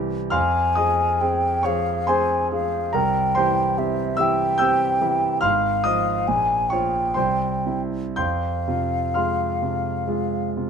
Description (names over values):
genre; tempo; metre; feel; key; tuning
classical, romantic duo for flute and grand piano; 57-73 BPM; 3/4; rubato; F minor; A4 = 440 Hz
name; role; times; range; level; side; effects
clear concert grand piano; accompaniment; 0.0-10.7 s; Ab1 to G6; -22 LUFS; right 1 dB; none
mellow hollow concert flute; melody; 0.3-10.5 s; E5 to Ab5; -22 LUFS; left 1 dB; none
room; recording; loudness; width
light reverb; minimal, uncompressed stereo recording; -19 LUFS; side -6 dB against mid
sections
0.0-10.7 A section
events
none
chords
0.3 Fm; 2.9 C; 5.4 Fm/Ab; 6.3 Bbm; 7.1 C; 8.2 Fm